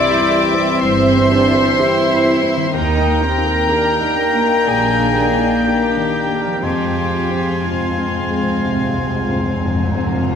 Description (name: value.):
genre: cinematic.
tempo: 59-63 BPM.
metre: 4/4.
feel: rubato.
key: F dorian.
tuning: A4 = 442 Hz.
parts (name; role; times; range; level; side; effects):
warm cello; melody; 0.0-9.7 s; F4 to D5; -23 LUFS; right 3 dB; none.
warm studio violin section; melody; 0.0-10.4 s; E5 to G5; -26 LUFS; left 5 dB; none.
bright concert flute; second line; 0.0-10.3 s; Bb5 to C6; -25 LUFS; left 4 dB; none.
bright oboe; second line; 0.0-10.3 s; E5 to Ab5; -25 LUFS; equal; none.
dark clarinet; second line; 0.0-9.7 s; F4 to D5; -25 LUFS; equal; none.
warm studio violin section; second line; 0.0-9.7 s; F5 to D6; -25 LUFS; left 4 dB; none.
dark studio viola section; accompaniment; 0.0-10.4 s; G3 to C5; -26 LUFS; right 3 dB; none.
felt-muted upright piano; accompaniment; 0.0-10.4 s; C2 to G4; -24 LUFS; left 2 dB; none.
dark French horn section; sustained chords; 0.0-10.3 s; Eb3 to C4; -21 LUFS; left 2 dB; none.
dark studio cello section; bass; 0.0-10.1 s; C4 to E4; -24 LUFS; right 3 dB; none.
dark studio double bass section; bass; 0.8-9.5 s; G1 to F2; -25 LUFS; right 3 dB; none.
concert harp; arpeggios; 2.6-10.4 s; Eb3 to Bb4; -30 LUFS; left 5 dB; none.
timpani; percussion; 6.6-10.4 s; F2; -23 LUFS; left 1 dB; none.
room: wet scoring stage reverb, RT60 1.8 s.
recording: none.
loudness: -14 LUFS.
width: side -7 dB against mid.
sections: 0.0-10.4 A section.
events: timpani fill 6.6-10.4.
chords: 0.0 C; 2.7 Eb; 6.6 Fm.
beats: 0.83 1.79 | 2.75 3.70 4.67 5.64 | 6.64 7.65 8.66 9.66.